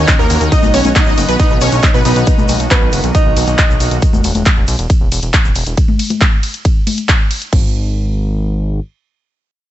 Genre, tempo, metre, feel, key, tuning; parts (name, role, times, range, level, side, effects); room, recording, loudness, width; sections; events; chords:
uplifting trance; 137 BPM; 4/4; straight; A4 = 437 Hz
supersaw chords; melody; 0.0-2.2 s; A#3 to D#5; -18 LUFS; right 1 dB; sidechain pumping, ping-pong delay
analog pluck; second line; 0.0-2.2 s; A#4 to D#5; -26 LUFS; right 1 dB
clear baby grand piano; second line; 0.0-3.9 s; B3 to D#5; -21 LUFS; right 2 dB; ping-pong delay
liquid acid bass; arpeggios; 0.0-2.3 s; D#3 to D#4; -23 LUFS; left 4 dB; analog chorus, vintage 12-bit sampler grit, sidechain pumping, ping-pong delay
fat analog bass; bass; 0.0-8.8 s; E1 to D#2; -16 LUFS; equal; sidechain pumping
lush unison pad; sustained chords; 0.1-4.0 s; D#3 to F#4; -22 LUFS; right 1 dB; chorus, sidechain pumping
big-room dance drum kit; drums; 0.1-7.6 s; crash cymbal, kick drum; -12 LUFS; equal
big-room dance drum kit; drums; 0.1-7.5 s; congas, handclaps, hi-hat, ride cymbal; -17 LUFS; left 2 dB
tube shaker; percussion; 0.1-5.8 s; -30 LUFS; left 6 dB
digital ambience; nothing above 8.0 kHz; -11 LUFS; side -13 dB against mid
0.0-7.5 A section; 7.5-9.7 B section
drop 0.0-7.5
0.0 D#m7; 0.5 B; 4.0 E5; 7.5 N.C.